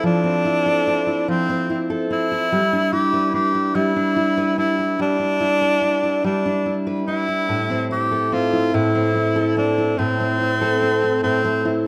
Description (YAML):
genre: pop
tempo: 48 BPM (dotted quarters)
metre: 6/8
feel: straight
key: unclear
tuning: A4 = 437 Hz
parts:
  - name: breathy tenor saxophone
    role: melody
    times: 0.0-11.7 s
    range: C4 to G4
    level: -23 LUFS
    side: equal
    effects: none
  - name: fingerpicked steel-string acoustic guitar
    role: accompaniment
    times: 0.0-11.9 s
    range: A2 to B4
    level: -22 LUFS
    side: equal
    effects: none
room: moderate lush hall reverb, RT60 3.3 s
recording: rough home demo mix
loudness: -20 LUFS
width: mono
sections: 0.0-11.9 A section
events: none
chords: 0.0 Fmaj7; 2.5 G6; 7.5 Am